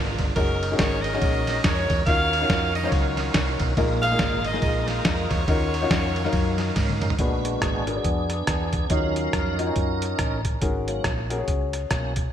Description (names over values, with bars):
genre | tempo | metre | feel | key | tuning
uptempo gospel | 140 BPM | 4/4 | swing 60% on 8ths | Eb minor | A4 = 440 Hz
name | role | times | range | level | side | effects
bright saxophone section | melody | 0.0-6.8 s | Db4 to F5 | -27 LUFS | equal | ping-pong delay
tonewheel organ | sustained chords | 0.0-12.1 s | Eb3 to F5 | -30 LUFS | right 2 dB | fast rotary speaker, chorus vibrato
hollow-body short-scale fingered electric bass | bass | 0.0-12.3 s | Gb1 to Ab2 | -28 LUFS | equal | none
lo-fi sampler-style drum kit | drums | 0.2-12.2 s | hi-hat, kick drum, ride cymbal, rim click, snare drum, toms | -25 LUFS | equal | gated reverb
warm upright piano | accompaniment | 0.4-11.9 s | Ab2 to F5 | -29 LUFS | left 4 dB | none
room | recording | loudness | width
light reverb | bright 1980s-style digital production | -21 LUFS | side -10 dB against mid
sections
0.0-7.2 A section; 7.2-12.3 B section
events
drum fill 6.8-7.2; tonewheel organ solo 7.2-12.3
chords
0.4 Gb69; 2.1 Ebm9; 3.8 Bb7sus4; 5.5 Ebm9; 7.2 Bb7b9b13; 8.9 Ebm9; 10.6 Ab9sus4